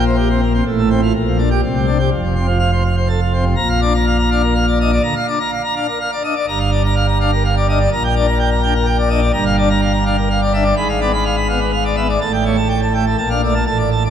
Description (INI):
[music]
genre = classical, organ toccata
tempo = 125 BPM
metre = 3/4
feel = straight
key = F major, Bb major from 3.6 s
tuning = A4 = 443 Hz
[part]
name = pipe organ, plenum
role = solo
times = 0.0-14.1 s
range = F1 to B5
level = -14 LUFS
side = equal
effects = none
[sound]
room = wet church reverb, RT60 3.4 s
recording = none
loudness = -14 LUFS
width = side -9 dB against mid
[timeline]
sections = 0.0-3.6 A section; 3.6-14.1 B section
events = none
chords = 0.0 C7(no3)/Bb; 0.7 F/A; 1.1 Gm7/Bb; 1.6 Csus2; 2.1 F; 3.6 Bb; 5.0 Bb/D; 6.5 Gm7; 7.9 Gm/Bb; 9.3 Gm7; 10.8 G#dim7; 12.2 A7; 13.2 Bbmaj7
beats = 0.17 | 0.65 1.14 1.62 | 2.11 2.61 3.10 | 3.59 4.07 4.56 | 5.04 5.52 6.00 | 6.48 6.96 7.43 | 7.91 8.39 8.87 | 9.34 9.82 10.30 | 10.77 11.25 11.73 | 12.21 12.70 13.19 | 13.68